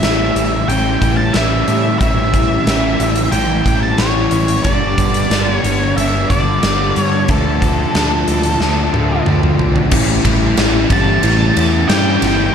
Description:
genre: rock, shoegaze and dream pop.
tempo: 91 BPM.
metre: 4/4.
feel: straight.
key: A mixolydian.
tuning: A4 = 440 Hz.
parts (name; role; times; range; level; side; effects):
octave-fuzz lead guitar; melody; 0.0-12.5 s; A4 to A5; -19 LUFS; equal; distortion, tape echo.
crunchy overdriven guitar; riff; 0.0-12.5 s; G2 to E4; -16 LUFS; left 1 dB; analog chorus.
growling picked electric bass; bass; 0.0-12.5 s; G1 to A2; -18 LUFS; equal; overdrive.
huge arena drum kit; drums; 0.0-12.4 s; crash cymbal, hi-hat, kick drum, ride cymbal, snare drum, toms; -18 LUFS; equal; none.
room: light reverb, small room ambience.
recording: dark, warm production.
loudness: -12 LUFS.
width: side -7 dB against mid.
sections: 0.0-9.9 A section; 9.9-12.5 B section.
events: drum fill 8.6-9.9.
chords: 0.0 A7; 4.6 G; 7.3 Dm; 9.9 A7.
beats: 0.01 0.68 1.34 | 2.00 2.66 3.33 3.99 | 4.65 5.31 5.97 6.63 | 7.29 7.95 8.61 9.26 | 9.92 10.58 11.23 11.89 | 12.54.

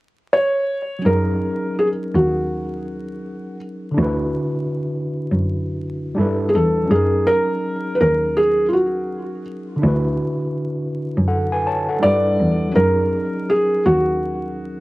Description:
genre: hip hop.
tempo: 82 BPM.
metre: 4/4.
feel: swing 64% on 16ths.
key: unclear.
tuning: A4 = 440 Hz.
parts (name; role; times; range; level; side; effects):
felt-muted upright piano; melody; 0.3-14.8 s; E#4 to D5; -18 LUFS; equal; low-pass filter, cassette tape.
tine electric piano; accompaniment; 1.0-14.8 s; D3 to A5; -23 LUFS; equal; overdrive, fast stereo tremolo, cassette tape, low-pass filter.
dark cello; bass; 1.1-14.8 s; D2 to G2; -21 LUFS; equal; none.
room: light reverb.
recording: home recording on cassette, vinyl crackle.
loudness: -17 LUFS.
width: side -19 dB against mid.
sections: 0.0-1.0 A section; 1.0-14.8 B section.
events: none.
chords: 0.0 N.C.; 1.0 F#69; 4.0 D69; 6.2 G69; 6.9 F#69; 9.8 D69; 12.0 G69; 12.8 F#69.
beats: 0.31 | 1.04 1.77 2.51 3.24 | 3.97 4.70 5.43 6.16 | 6.90 7.63 8.36 9.09 | 9.82 10.55 11.29 12.02 | 12.75 13.48 14.21.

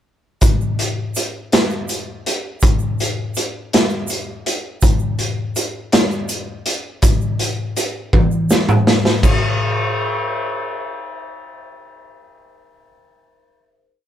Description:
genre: rock.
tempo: 54 BPM (dotted quarters).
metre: 6/8.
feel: straight.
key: none.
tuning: none.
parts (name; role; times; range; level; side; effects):
raw garage drum kit; drums; 0.4-9.4 s; crash cymbal, hi-hat, kick drum, snare drum, toms; -16 LUFS; equal; none.
egg shaker; percussion; 0.4-9.6 s; none; -30 LUFS; right 5 dB; none.
room: moderate small room reverb, RT60 0.5 s.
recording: band playing live in one room.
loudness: -16 LUFS.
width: side -10 dB against mid.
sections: 0.4-9.2 riff; 9.2-11.4 final hit.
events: drum fill 8.1-9.2.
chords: none.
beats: | 0.42 1.52 | 2.62 3.73 | 4.83 5.93 | 7.03 8.13 | 9.23.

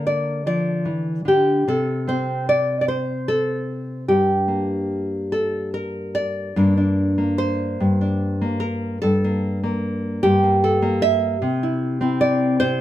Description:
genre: folk, solo fingerstyle acoustic guitar.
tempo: 50 BPM (dotted quarters).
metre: 6/8.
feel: rubato.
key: G dorian.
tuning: A4 = 436 Hz.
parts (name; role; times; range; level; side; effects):
nylon-string guitar; solo; 0.0-12.8 s; G2 to E5; -18 LUFS; equal; none.
room: light reverb.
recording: band playing live in one room.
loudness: -18 LUFS.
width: side -13 dB against mid.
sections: 0.0-6.6 A section; 6.6-12.8 B section.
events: none.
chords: 0.0 Bb6/D; 1.7 N.C.; 4.1 Gm; 6.6 Gmadd9; 11.4 C.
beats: 0.47 | 1.67 2.88 | 4.09 5.31 | 6.56 7.79 | 9.01 10.22 | 11.41 12.61.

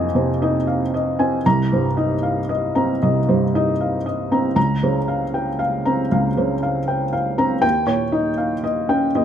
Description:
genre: neoclassical minimalist piano.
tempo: 78 BPM.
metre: 4/4.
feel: rubato.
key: unclear.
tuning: A4 = 441 Hz.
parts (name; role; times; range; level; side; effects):
felt-muted upright piano; solo; 0.0-9.2 s; C2 to Bb5; -17 LUFS; equal; none.
room: light reverb.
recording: none.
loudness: -17 LUFS.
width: side -9 dB against mid.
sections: 0.0-9.2 A section.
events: none.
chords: 0.0 Fm7; 1.4 Cm7; 4.6 Bbmadd9/Db; 7.6 Eb7.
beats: 0.66 | 1.45 2.23 3.01 3.80 | 4.56 5.33 6.11 6.88 | 7.63 8.39 9.15.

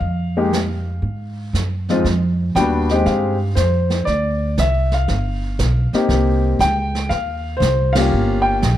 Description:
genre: jazz piano trio.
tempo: 119 BPM.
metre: 4/4.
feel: swing 68% on 8ths.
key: F minor.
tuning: A4 = 440 Hz.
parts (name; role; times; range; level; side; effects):
warm concert grand piano; melody; 0.0-8.8 s; F2 to G5; -19 LUFS; left 2 dB; none.
upright bass; bass; 0.0-8.8 s; G1 to Ab2; -19 LUFS; right 1 dB; none.
jazz brush drum kit; drums; 0.0-8.8 s; brushed snare drum, hi-hat, ride cymbal, snare drum; -27 LUFS; right 3 dB; none.
room: moderate large studio reverb, RT60 1.4 s.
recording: dark, warm production.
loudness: -16 LUFS.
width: side -12 dB against mid.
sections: 0.0-2.1 A section; 2.1-8.8 B section.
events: band accent 7.9.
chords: 0.0 Fm; 2.1 Fm7; 4.1 Cadd9; 5.1 G7; 6.1 Cm7; 8.1 Gm7b5.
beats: | 0.03 0.53 1.04 1.54 | 2.05 2.56 3.06 3.57 | 4.08 4.58 5.09 5.59 | 6.10 6.61 7.11 7.62 | 8.12 8.63.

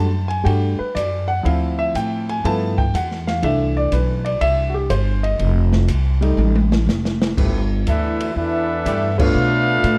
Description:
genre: jazz, big band swing.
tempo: 122 BPM.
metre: 4/4.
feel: swing 68% on 8ths.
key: G major.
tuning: A4 = 443 Hz.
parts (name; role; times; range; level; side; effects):
clear concert grand piano; accompaniment; 0.0-9.8 s; E3 to A5; -24 LUFS; equal; none.
upright bass; bass; 0.0-10.0 s; F1 to B2; -22 LUFS; equal; none.
open jazz drum kit; drums; 0.3-10.0 s; crash cymbal, hi-hat, kick drum, ride cymbal, snare drum, toms; -28 LUFS; equal; none.
clear trombone section; sustained chords; 7.4-9.1 s; A3 to D5; -32 LUFS; equal; none.
warm trumpet section; melody; 7.9-10.0 s; D4 to F5; -23 LUFS; equal; none.
warm trombone section; second line; 7.9-10.0 s; E3 to F4; -26 LUFS; equal; none.
room: light reverb.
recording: none.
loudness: -19 LUFS.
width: mono.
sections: 0.0-7.4 A section; 7.4-10.0 B section.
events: grand piano solo 0.0-7.4; drum fill 6.4-7.4; band accent 9.1.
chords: 0.0 Em11 (rootless); 1.4 Dm9; 2.4 G13; 3.4 C69; 5.4 F9; 7.4 G69; 9.3 Bm7b5.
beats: 0.46 0.95 | 1.45 1.94 2.43 2.93 | 3.42 3.92 4.41 4.90 | 5.40 5.89 6.38 6.88 | 7.37 7.86 8.36 8.85 | 9.34 9.84.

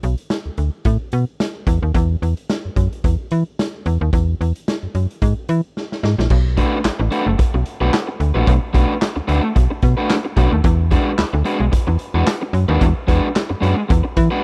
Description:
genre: funk.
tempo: 110 BPM.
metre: 4/4.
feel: swing 56% on 16ths.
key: B dorian.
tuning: A4 = 441 Hz.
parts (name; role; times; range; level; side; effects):
slap-like FM bass; bass; 0.0-14.3 s; F#1 to E3; -19 LUFS; equal; none.
raw garage drum kit; drums; 0.0-14.3 s; crash cymbal, handclaps, hi-hat, kick drum, snare drum; -22 LUFS; equal; none.
crunchy overdriven guitar; accompaniment; 6.6-14.4 s; G#3 to B4; -23 LUFS; equal; spring reverb.
room: little or no reverb.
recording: dry, close 1970s-style studio recording.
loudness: -18 LUFS.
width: mono.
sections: 0.0-6.3 A section; 6.3-14.4 B section.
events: drum fill 5.8-6.3.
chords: 0.0 Bm7; 1.9 N.C.; 6.3 Bm7; 10.6 E9.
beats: 0.30 0.85 1.40 | 1.94 2.49 3.04 3.58 | 4.13 4.67 5.22 5.76 | 6.30 6.85 7.39 7.93 | 8.47 9.02 9.56 10.10 | 10.64 11.18 11.73 12.27 | 12.81 13.36 13.90.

